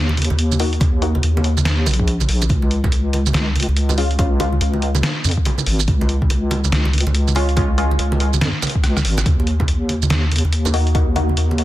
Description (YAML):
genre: deep dubstep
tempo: 142 BPM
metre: 4/4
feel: swing 62% on 16ths, half-time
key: unclear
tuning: A4 = 443 Hz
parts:
  - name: deep soft wobble bass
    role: bass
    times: 0.0-11.6 s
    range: Ab1 to F2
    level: -17 LUFS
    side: equal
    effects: chorus
  - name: congas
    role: percussion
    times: 0.1-11.6 s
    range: none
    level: -26 LUFS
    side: right 2 dB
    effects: dub echo
  - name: trip hop sampler-style drum kit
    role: drums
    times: 0.2-11.6 s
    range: hi-hat, rim click, shaker, snare drum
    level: -23 LUFS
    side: right 1 dB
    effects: none
  - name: filtered dub chord stab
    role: stabs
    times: 0.6-1.1, 4.0-4.5, 7.4-7.9, 10.7-11.3 s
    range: Ab3 to Gb4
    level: -24 LUFS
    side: left 2 dB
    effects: chorus, dub echo
  - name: electronic kick drum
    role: drums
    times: 0.8-11.1 s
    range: none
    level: -18 LUFS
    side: equal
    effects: none
room: little or no reverb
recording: dense, heavily limited modern master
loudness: -15 LUFS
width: side -15 dB against mid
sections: 0.0-11.6 A section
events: drum fill 8.6-9.3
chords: 0.0 Ebm; 2.5 Db; 9.3 Ebm